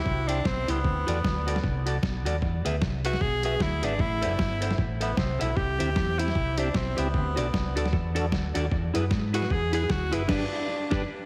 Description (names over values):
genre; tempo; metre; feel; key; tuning
ska; 152 BPM; 4/4; swing 58% on 8ths; unclear; A4 = 441 Hz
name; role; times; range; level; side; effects
clear tenor saxophone; melody; 0.0-11.1 s; B3 to G#4; -33 LUFS; equal; tape echo
hollow-body short-scale fingered electric bass; bass; 0.1-11.0 s; F#1 to G#2; -32 LUFS; equal; none
lo-fi sampler-style drum kit; drums; 0.1-11.0 s; crash cymbal, hi-hat, kick drum, snare drum; -32 LUFS; equal; overdrive, tape echo
clean electric guitar; accompaniment; 0.3-11.0 s; D4 to E5; -35 LUFS; equal; spring reverb, tape echo
percussive tonewheel organ; stabs; 5.8-11.0 s; C4 to B4; -38 LUFS; equal; chorus vibrato, slow rotary speaker
room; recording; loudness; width
moderate concert hall reverb, RT60 2.3 s; heavily compressed radio sound; -27 LUFS; mono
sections
0.0-11.3 A section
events
band accent 10.3-11.3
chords
0.0 C; 0.8 D; 2.4 E; 4.0 Am; 5.6 C; 7.1 D; 8.7 E; 10.3 G